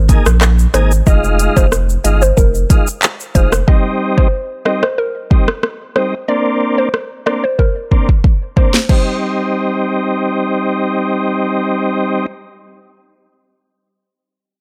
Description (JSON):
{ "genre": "dancehall", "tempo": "92 BPM", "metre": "4/4", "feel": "straight", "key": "C minor", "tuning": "A4 = 440 Hz", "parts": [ { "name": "hollow square pluck", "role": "melody", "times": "0.0-10.8 s", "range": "Bb4 to Eb5", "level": "-23 LUFS", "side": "equal", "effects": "chorus, delay" }, { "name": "saturated sub bass", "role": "bass", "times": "0.0-3.6 s", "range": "F1 to Bb1", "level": "-15 LUFS", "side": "equal", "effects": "none" }, { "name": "tonewheel organ", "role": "accompaniment", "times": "0.1-12.3 s", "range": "G3 to Ab4", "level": "-19 LUFS", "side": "equal", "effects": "chorus vibrato" }, { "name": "afro-pop drum kit", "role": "drums", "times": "0.1-9.1 s", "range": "crash cymbal, handclaps, hi-hat, kick drum, rim click, shaker, snare drum", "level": "-15 LUFS", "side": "equal", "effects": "none" } ], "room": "little or no reverb", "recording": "none", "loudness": "-14 LUFS", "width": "mono", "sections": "0.0-3.7 A section; 3.7-8.9 B section; 8.9-11.5 C section", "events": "drum fill 7.6-8.9", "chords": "0.0 Absus2; 1.1 Fm7; 3.7 Cm; 6.3 Bbadd9; 8.9 Cm", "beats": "0.42 | 1.07 1.72 2.37 3.02 | 3.68 4.33 4.98 5.63 | 6.29 6.94 7.59 8.24 | 8.89 9.55 10.20 10.85" }